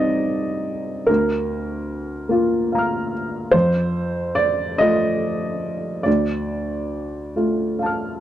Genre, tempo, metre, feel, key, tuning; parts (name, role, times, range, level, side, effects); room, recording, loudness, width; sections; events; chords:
neoclassical minimalist piano; 46-49 BPM (dotted quarters); 6/8; rubato; A4 = 439 Hz
dark upright piano; solo; 0.0-8.2 s; C2 to F6; -19 LUFS; equal
studio reverb; dry, close 1970s-style studio recording; -19 LUFS; side -12 dB against mid
0.0-8.2 A section
0.0 Cm; 1.1 Bb/D; 3.5 F; 6.1 Dm